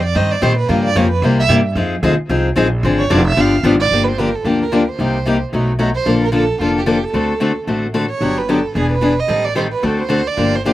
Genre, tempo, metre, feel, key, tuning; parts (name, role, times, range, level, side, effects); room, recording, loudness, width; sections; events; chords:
acoustic string swing (jazz manouche); 223 BPM; 4/4; swing 56% on 8ths; G minor from 3.9 s; A4 = 440 Hz
dark violin; melody; 0.0-10.7 s; F4 to F5; -20 LUFS; right 4 dB; slapback echo
upright bass; bass; 0.0-10.7 s; E1 to Bb2; -19 LUFS; right 1 dB
picked steel-string acoustic guitar; accompaniment; 0.1-10.7 s; B2 to C5; -16 LUFS; left 2 dB; slapback echo
little or no reverb; recorded outdoors, with no room sound; -13 LUFS; side -14 dB against mid
0.0-3.9 A section; 3.9-10.7 B section
violin solo 0.0-3.9
0.0 Eb6; 0.7 Gm7b5; 1.2 C7; 1.8 Fm7; 2.8 Dm7b5; 3.4 G7; 3.9 Gm7; 5.0 Cm7; 5.5 B7; 6.1 Bbmaj7; 7.1 D7; 8.2 Gmaj7; 8.8 E7; 9.3 Am7b5; 9.8 D7